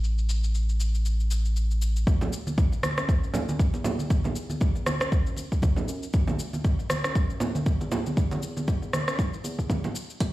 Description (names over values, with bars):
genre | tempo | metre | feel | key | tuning
afro house | 118 BPM | 4/4 | swing 57% on 16ths | unclear | A4 = 439 Hz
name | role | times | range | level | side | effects
round analog bass | bass | 0.0-10.3 s | D1 to F#2 | -29 LUFS | equal | tube saturation, sidechain pumping, high-pass filter
afro-pop drum kit | drums | 0.0-10.3 s | cabasa, hi-hat, rim click, toms | -33 LUFS | equal | high-pass filter on perc, high-pass filter on toms, high-pass filter on snare, high-pass filter on hats
electronic kick drum | drums | 2.1-10.3 s | none | -24 LUFS | equal | overdrive
congas | percussion | 2.2-9.9 s | none | -30 LUFS | right 2 dB | none
riser | sound effects | 10.2-10.3 s | none | barely audible | none | none
room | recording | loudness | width
light reverb, digital ambience | played on a big sound system in a bare room, stone room reverb, high-pass filter, low-pass filter | -24 LUFS | side -17 dB against mid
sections
0.0-2.1 A section; 2.1-10.3 B section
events
build-up 2.1-10.3; drum fill 2.1-10.3; filter sweep 2.1-10.3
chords
none